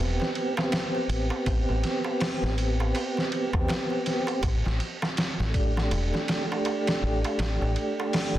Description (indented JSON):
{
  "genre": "trip hop",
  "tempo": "81 BPM",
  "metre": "4/4",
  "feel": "swing 60% on 16ths",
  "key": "A minor",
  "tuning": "A4 = 438 Hz",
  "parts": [
    { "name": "tonewheel organ", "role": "accompaniment", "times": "0.0-8.4 s", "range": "A3 to G4", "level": "-28 LUFS", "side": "right 1 dB", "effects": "overdrive, slow rotary speaker, tremolo, tape echo" },
    { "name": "deep dub fingered electric bass", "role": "bass", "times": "0.0-8.4 s", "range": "E1 to E2", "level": "-27 LUFS", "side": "equal", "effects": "none" },
    { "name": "trip hop sampler-style drum kit", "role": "drums", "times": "0.2-8.4 s", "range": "hi-hat, kick drum, ride cymbal, snare drum", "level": "-29 LUFS", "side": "equal", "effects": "none" },
    { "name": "darbuka", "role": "percussion", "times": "0.2-8.4 s", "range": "none", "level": "-37 LUFS", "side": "right 2 dB", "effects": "none" }
  ],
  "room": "light reverb",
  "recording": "dense, heavily limited modern master",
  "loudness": "-24 LUFS",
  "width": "side -13 dB against mid",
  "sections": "0.0-8.4 A section",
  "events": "none",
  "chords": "0.0 Am7; 4.4 Emadd11 (rootless)"
}